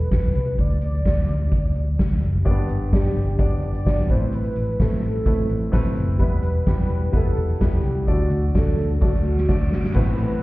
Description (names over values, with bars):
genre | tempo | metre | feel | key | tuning
piano-driven pop | 128 BPM | 4/4 | straight | unclear | A4 = 440 Hz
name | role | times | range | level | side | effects
warm velvety synth lead | melody | 0.0-10.4 s | F#4 to D5 | -29 LUFS | right 1 dB | chorus, tape echo
vintage muted fingered electric bass | bass | 0.0-10.4 s | E1 to D2 | -22 LUFS | equal | none
soft-mallet drum kit | drums | 0.1-10.4 s | crash cymbal, hi-hat, kick drum, snare drum, toms | -22 LUFS | equal | none
warm concert grand piano | accompaniment | 2.4-10.4 s | G2 to D5 | -27 LUFS | left 1 dB | none
reverse cymbal and downlifter | sound effects | 9.2-10.4 s | none | -43 LUFS | right 2 dB | none
room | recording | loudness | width
studio ambience | heard muffled through a wall, stone room reverb, EQ | -18 LUFS | side -19 dB against mid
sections
0.0-10.0 A section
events
drum fill 9.0-10.0; reverse cymbal 9.2-10.0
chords
0.0 E5; 0.6 N.C.; 2.5 G; 4.1 Amadd9; 6.2 Em; 8.1 D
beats
0.11 | 0.58 1.05 1.52 1.99 | 2.46 2.92 3.39 3.86 | 4.33 4.80 5.27 5.74 | 6.21 6.67 7.14 7.61 | 8.08 8.55 9.02 9.48 | 9.95 10.42